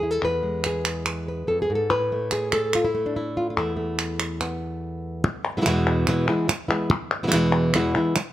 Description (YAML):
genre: flamenco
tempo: 144 BPM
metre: 4/4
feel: straight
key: E major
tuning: A4 = 440 Hz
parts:
  - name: flamenco guitar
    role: melody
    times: 0.0-8.2 s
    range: E2 to B4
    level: -22 LUFS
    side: equal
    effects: none
  - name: palmas hand claps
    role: percussion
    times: 0.2-8.3 s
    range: none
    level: -26 LUFS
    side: equal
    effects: none
room: light reverb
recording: close, detailed microphones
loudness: -21 LUFS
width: side -13 dB against mid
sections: 0.0-5.2 A section; 5.2-8.3 B section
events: none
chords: 0.0 E; 1.9 N.C.; 3.6 Esus4; 5.2 E